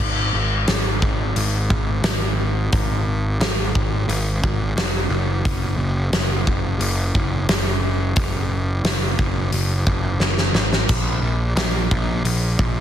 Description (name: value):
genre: quiet-loud alternative rock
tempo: 88 BPM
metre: 4/4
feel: straight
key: unclear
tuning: A4 = 440 Hz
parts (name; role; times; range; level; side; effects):
- fuzz picked electric bass; bass; 0.0-12.8 s; F1 to Bb1; -21 LUFS; equal; overdrive
- big rock drum kit; drums; 0.7-12.7 s; hi-hat, kick drum, snare drum, splash cymbal; -21 LUFS; equal; none
room: little or no reverb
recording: dense, heavily limited modern master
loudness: -18 LUFS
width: side -10 dB against mid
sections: 0.0-12.8 A section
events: drum fill 10.2-10.9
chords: none